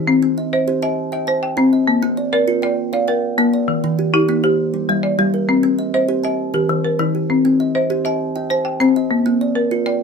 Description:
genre	southern african traditional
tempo	133 BPM (dotted quarters)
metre	12/8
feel	straight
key	C equiheptatonic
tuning	A4 = 441 Hz
part	folk marimba with hard mallets	arpeggios	0.0-10.0 s	Eb3+43c to G5	-17 LUFS	left 3 dB	none
part	kalimba	arpeggios	0.0-10.0 s	Eb3+43c to A5-43c	-20 LUFS	right 4 dB	none
room	moderate small room reverb, RT60 0.6 s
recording	minimal, uncompressed stereo recording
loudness	-15 LUFS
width	side -5 dB against mid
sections	0.1-10.0 A section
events	none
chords	0.1 Cm; 1.9 Bb; 3.7 Eb; 4.6 Gm; 5.5 Cm; 6.4 Eb; 7.3 Cm; 9.1 Bb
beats	| 0.07 0.52 0.97 1.42 | 1.88 2.33 2.78 3.23 | 3.68 4.13 4.59 5.04 | 5.49 5.94 6.39 6.85 | 7.30 7.75 8.20 8.66 | 9.11 9.56 10.01

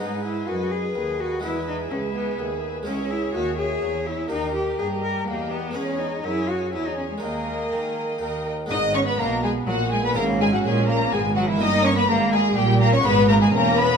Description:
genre	classical, baroque-style concerto movement with solo episodes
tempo	124 BPM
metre	3/4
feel	straight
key	G# minor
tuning	A4 = 436 Hz
part	dark studio violin section	melody	0.0-14.0 s	D#5 to D#6	-29 LUFS	left 4 dB	none
part	rich cello	melody	0.0-14.0 s	E3 to A#4	-26 LUFS	left 2 dB	none
part	warm symphonic violin section	second line	0.0-14.0 s	E4 to D#5	-27 LUFS	left 2 dB	none
part	harpsichord	accompaniment	0.0-14.0 s	C#2 to G#4	-32 LUFS	right 1 dB	none
part	warm chamber viola section	accompaniment	0.0-14.0 s	A#3 to A#4	-31 LUFS	right 4 dB	none
part	dark chamber cello section	bass	0.0-14.0 s	C#2 to D#3	-27 LUFS	right 3 dB	none
part	warm chamber double bass section	bass	8.7-14.0 s	E1 to B1	-28 LUFS	right 3 dB	none
room	wet recital hall reverb, RT60 1.3 s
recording	none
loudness	-20 LUFS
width	side -6 dB against mid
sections	0.0-8.7 A section; 8.7-14.0 B section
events	none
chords	0.0 G#m; 1.4 E; 2.9 C#m; 4.3 D#; 5.8 C#m/E; 7.2 D#sus4; 8.2 D#; 8.7 G#m; 10.2 C#m/G#; 11.6 D#7/G; 13.0 C#m7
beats	| 0.00 0.48 0.96 | 1.44 1.91 2.39 | 2.87 3.35 3.83 | 4.31 4.79 5.28 | 5.76 6.24 6.73 | 7.22 7.72 8.21 | 8.70 9.19 9.67 | 10.16 10.64 11.12 | 11.61 12.09 12.57 | 13.05 13.53

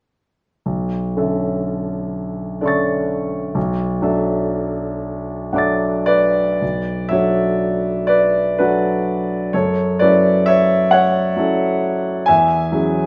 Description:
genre	classical, impressionist solo piano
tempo	35-44 BPM (dotted quarters)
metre	6/8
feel	rubato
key	B minor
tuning	A4 = 439 Hz
part	warm concert grand piano	solo	0.7-13.1 s	B1 to A6	-18 LUFS	equal	none
room	wet stone room reverb, RT60 1.0 s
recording	none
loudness	-18 LUFS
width	mono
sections	0.7-6.6 A section; 6.6-13.1 B section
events	none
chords	0.7 Bm11; 3.6 D69/B; 6.6 Bm7; 9.5 F#m7; 12.3 E69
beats	| 0.67 2.14 | 3.56 5.00 | 6.62 8.09 | 9.53 10.91 | 12.27

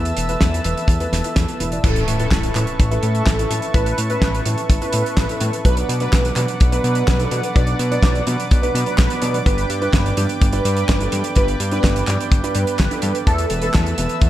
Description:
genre	italo disco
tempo	126 BPM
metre	4/4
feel	straight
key	A mixolydian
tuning	A4 = 439 Hz
part	warm analog pad	sustained chords	0.0-14.3 s	B4 to E6	-27 LUFS	right 2 dB	chorus
part	dark grand piano	stabs	0.0-14.3 s	G2 to D5	-26 LUFS	right 1 dB	none
part	fat analog bass	bass	0.0-14.3 s	E1 to B2	-21 LUFS	equal	none
part	damped 70s drum kit	drums	0.1-14.3 s	crash cymbal, handclaps, hi-hat, snare drum	-24 LUFS	right 1 dB	studio reverb, gated reverb
part	kick drum	drums	0.4-14.3 s	none	-16 LUFS	equal	studio reverb
part	wide unison lead	melody	1.8-13.9 s	A4 to D5	-25 LUFS	right 1 dB	ensemble chorus, digital delay
part	impact	sound effects	1.8-3.7 s	none	-29 LUFS	equal	none
room	small room ambience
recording	none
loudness	-16 LUFS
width	side -13 dB against mid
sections	0.0-1.8 A section; 1.8-14.3 B section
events	impact 1.8-3.7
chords	0.0 Esus4; 1.8 Aadd9; 5.7 Bm; 9.5 G; 13.3 Esus4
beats	0.41 0.89 1.36 | 1.84 2.32 2.79 3.27 | 3.75 4.22 4.70 5.17 | 5.65 6.13 6.60 7.08 | 7.55 8.03 8.51 8.98 | 9.46 9.94 10.41 10.89 | 11.36 11.84 12.32 12.79 | 13.27 13.74 14.22

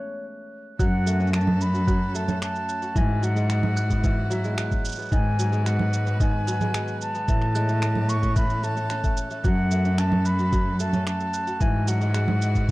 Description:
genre	folktronica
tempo	111 BPM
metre	4/4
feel	straight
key	F# dorian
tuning	A4 = 441 Hz
part	mellow concert flute	melody	0.0-12.7 s	C#5 to C#6	-30 LUFS	equal	tape echo
part	kora	arpeggios	0.0-12.7 s	D#3 to F#4	-32 LUFS	equal	tape echo
part	glockenspiel with rubber mallets	second line	0.8-12.3 s	F#6	-37 LUFS	right 4 dB	tape echo
part	clear string quartet	sustained chords	0.8-12.7 s	F#3 to C#5	-38 LUFS	left 1 dB	none
part	dark cello	bass	0.8-12.7 s	F#2 to A2	-24 LUFS	equal	none
part	electronic kick drum	drums	0.8-12.7 s	none	-24 LUFS	equal	none
part	electronic shaker, finger snaps and congas	drums	0.8-12.7 s	none	-31 LUFS	right 3 dB	none
room	small room ambience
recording	dry, close 1970s-style studio recording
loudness	-21 LUFS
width	side -19 dB against mid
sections	0.8-12.7 A section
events	break 0.0-0.8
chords	0.0 Amaj7; 0.8 F#m; 3.0 Eadd9/G#; 5.1 G#m7; 7.3 Amaj7; 9.4 F#m; 11.6 Eadd9/G#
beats	0.26 | 0.80 1.34 1.88 2.42 | 2.96 3.50 4.04 4.58 | 5.12 5.66 6.20 6.74 | 7.28 7.82 8.36 8.90 | 9.45 9.98 10.53 11.07 | 11.61 12.15 12.69

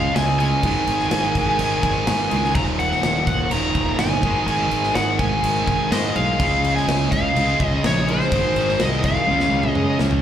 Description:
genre	hard rock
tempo	125 BPM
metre	4/4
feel	straight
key	unclear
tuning	A4 = 440 Hz
part	high-gain lead guitar	melody	0.0-10.0 s	C5 to Bb5	-22 LUFS	equal	distortion
part	dark French horn section	sustained chords	0.0-10.1 s	Eb3 to Eb5	-32 LUFS	right 1 dB	none
part	distorted electric guitar	riff	0.0-10.2 s	Eb2 to Db4	-28 LUFS	left 11 dB	overdrive, slapback echo
part	high-gain distorted guitar	riff	0.0-10.2 s	Eb2 to Db4	-31 LUFS	equal	none
part	sludgy distorted guitar	riff	0.0-10.2 s	Eb2 to Db4	-25 LUFS	right 8 dB	overdrive
part	fuzz fingered electric bass	bass	0.0-10.2 s	Eb1 to Db3	-24 LUFS	equal	overdrive
part	big rock drum kit	drums	0.2-10.2 s	crash cymbal, kick drum, snare drum, toms	-25 LUFS	equal	none
room	light reverb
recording	live gig heard through the venue's PA, club reverb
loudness	-17 LUFS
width	side -10 dB against mid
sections	0.0-10.2 A section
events	drum fill 9.3-10.2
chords	0.0 Db5; 0.6 Ab5; 2.6 Ebm; 4.2 Ab5; 6.4 Db; 8.3 Ab; 9.3 Db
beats	0.16 | 0.64 1.12 1.60 2.08 | 2.56 3.04 3.52 4.00 | 4.48 4.96 5.44 5.92 | 6.40 6.88 7.36 7.84 | 8.32 8.80 9.28 9.76

